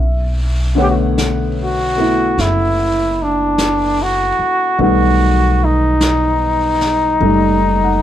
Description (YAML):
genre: jazz ballad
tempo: 50 BPM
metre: 4/4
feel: swing 66% on 8ths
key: unclear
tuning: A4 = 440 Hz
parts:
  - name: clear upright piano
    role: accompaniment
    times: 0.0-8.0 s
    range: D3 to F#5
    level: -18 LUFS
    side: equal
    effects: none
  - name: upright bass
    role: bass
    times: 0.0-8.0 s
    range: F#1 to B1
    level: -18 LUFS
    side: equal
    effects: none
  - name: warm flugelhorn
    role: melody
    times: 0.8-8.0 s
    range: D4 to G4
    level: -15 LUFS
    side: equal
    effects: none
  - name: vintage brush drum kit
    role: drums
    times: 1.2-8.0 s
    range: brushed snare drum, hi-hat, snare drum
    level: -25 LUFS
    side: left 1 dB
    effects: none
room: little or no reverb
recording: dark, warm production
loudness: -12 LUFS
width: side -11 dB against mid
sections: 0.0-8.0 A section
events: none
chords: 0.0 Bm9; 4.8 B7b13